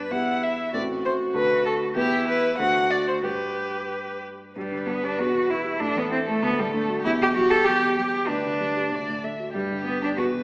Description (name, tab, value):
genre	quick classical-period movement for piano trio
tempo	96 BPM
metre	2/4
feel	straight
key	G major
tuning	A4 = 440 Hz
part	rich violin	melody	0.0-10.4 s	G4 to F#5	-26 LUFS	left 1 dB	none
part	rich cello	second line	0.0-10.2 s	G3 to A4	-24 LUFS	right 1 dB	none
part	warm concert grand piano	accompaniment	0.0-10.4 s	A1 to C5	-29 LUFS	equal	none
room	moderate scoring stage reverb, RT60 1.6 s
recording	small speaker sound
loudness	-21 LUFS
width	side -25 dB against mid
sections	0.0-4.6 A section; 4.6-10.4 A section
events	none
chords	0.1 Em; 0.7 Am; 1.4 D; 2.0 Em; 2.6 D7; 3.2 G; 5.2 Em; 5.8 A5; 6.4 D; 7.0 Em; 8.3 G/D; 8.9 D; 9.5 G